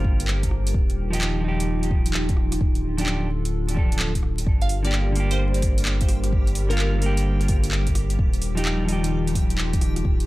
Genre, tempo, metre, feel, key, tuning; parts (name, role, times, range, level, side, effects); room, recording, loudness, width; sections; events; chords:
future garage; 129 BPM; 4/4; swing 66% on 16ths; G minor; A4 = 438 Hz
clean electric guitar; accompaniment; 0.0-10.1 s; D3 to A4; -29 LUFS; right 2 dB; sidechain pumping, tape echo
warbly tape-like pad; sustained chords; 0.0-10.3 s; D3 to D5; -31 LUFS; left 2 dB; chorus, built-in reverb, sidechain pumping
soft dub sub bass; bass; 0.0-10.3 s; D1 to G1; -24 LUFS; equal; sidechain pumping
electronic kick drum; drums; 0.0-10.2 s; -22 LUFS; equal; small room reverb
garage drum kit; drums; 0.2-10.3 s; handclaps, hi-hat, rim click; -30 LUFS; right 1 dB; overdrive, small room reverb
backwards swelling texture; texture; 5.1-10.3 s; G3 to G4; -36 LUFS; left 1 dB; built-in reverb
glassy wavetable pluck; melody; 4.6-6.9 s; Bb4 to F5; -33 LUFS; equal; chorus, tape echo
digital ambience; echo-heavy mix, vinyl crackle; -20 LUFS; side -18 dB against mid
0.0-10.3 A section
0.0 Gm; 0.7 Ebadd9; 2.6 Dm; 4.5 Gm; 8.2 Ebadd9